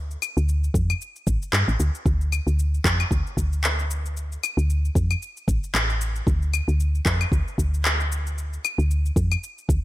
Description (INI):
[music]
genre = organic downtempo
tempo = 114 BPM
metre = 4/4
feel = swing 57% on 16ths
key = D minor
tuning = A4 = 438 Hz
[part]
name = woody FM bass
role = bass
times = 0.0-9.8 s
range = A1 to G2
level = -22 LUFS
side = equal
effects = none
[part]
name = electronic shaker, claves and handclaps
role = drums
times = 0.1-9.8 s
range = none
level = -27 LUFS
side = left 2 dB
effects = overdrive, gated reverb
[part]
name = electronic kick drum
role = drums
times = 0.7-9.8 s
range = none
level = -24 LUFS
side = equal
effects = none
[sound]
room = little or no reverb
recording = bright 1980s-style digital production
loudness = -21 LUFS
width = side -16 dB against mid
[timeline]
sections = 0.0-9.8 A section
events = none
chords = none